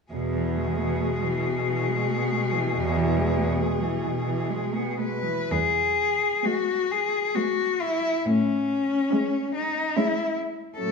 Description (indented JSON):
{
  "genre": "classical, lyrical piece for cello ensemble",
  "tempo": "58-74 BPM",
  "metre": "3/4",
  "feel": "rubato",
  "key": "E major",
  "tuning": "A4 = 440 Hz",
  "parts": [
    { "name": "clear cello", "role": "melody", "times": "0.1-10.9 s", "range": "C#4 to B4", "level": "-26 LUFS", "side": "left 4 dB", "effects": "none" },
    { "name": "rich cello", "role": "second line", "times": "0.1-10.9 s", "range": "B2 to C#4", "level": "-30 LUFS", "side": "right 5 dB", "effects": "none" },
    { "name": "clear cello", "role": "accompaniment", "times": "0.1-10.9 s", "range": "B2 to G#3", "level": "-29 LUFS", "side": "left 3 dB", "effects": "none" },
    { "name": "clear cello", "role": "bass", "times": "0.1-10.9 s", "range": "E2 to A2", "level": "-27 LUFS", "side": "equal", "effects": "none" }
  ],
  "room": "wet recital hall reverb, RT60 1.5 s",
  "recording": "none",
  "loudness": "-23 LUFS",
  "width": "side -5 dB against mid",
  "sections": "0.1-5.5 A section; 5.5-10.9 B section",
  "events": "none",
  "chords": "0.1 E; 8.2 Amaj7"
}